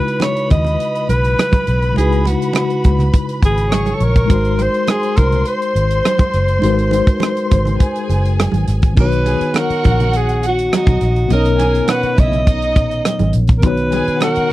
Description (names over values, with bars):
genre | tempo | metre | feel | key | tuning
lush 1970s-style soul | 103 BPM | 4/4 | straight | unclear | A4 = 439 Hz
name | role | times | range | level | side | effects
warm alto saxophone | melody | 0.0-14.5 s | F#4 to D#5 | -19 LUFS | equal | none
warm studio violin section | second line | 0.0-14.5 s | D#4 to C#6 | -24 LUFS | right 1 dB | none
mellow tine electric piano | accompaniment | 0.0-14.5 s | B2 to C#5 | -21 LUFS | left 3 dB | medium stereo tremolo
tight funk drum kit | drums | 0.1-14.5 s | crash cymbal, hi-hat, kick drum, rim click | -14 LUFS | equal | none
congas | percussion | 0.2-14.3 s | none | -24 LUFS | right 5 dB | none
vintage muted fingered electric bass | bass | 0.5-14.4 s | F#1 to D#2 | -17 LUFS | equal | none
room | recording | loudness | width
little or no reverb | dry, close 1970s-style studio recording, tape saturation | -13 LUFS | side -16 dB against mid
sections
0.0-9.0 A section; 9.0-14.5 B section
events
none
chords
0.0 C#m11; 4.3 G#7; 9.0 Bmaj7